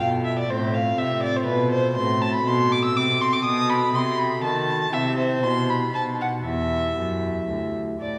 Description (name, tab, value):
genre	classical, baroque-style sonata movement with continuo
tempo	121 BPM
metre	3/4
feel	rubato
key	E minor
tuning	A4 = 439 Hz
part	dark violin	melody	0.0-8.2 s	B4 to E6	-26 LUFS	equal	none
part	pipe organ, stopped flute	accompaniment	0.0-8.2 s	D2 to A4	-30 LUFS	equal	none
part	warm cello	bass	0.0-8.2 s	D2 to D#3	-28 LUFS	equal	none
room	wet church reverb, RT60 2.7 s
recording	recorded in a church or concert hall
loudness	-23 LUFS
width	mono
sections	0.0-8.0 A section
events	none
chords	0.5 F/A; 2.0 F#dim/A; 3.4 B7; 4.9 C; 5.4 Em/B; 5.9 B; 6.4 Em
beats	| 0.48 0.97 1.47 | 1.96 2.45 2.95 | 3.44 3.94 4.43 | 4.93 5.42 5.93 | 6.45 6.97 7.49 | 8.01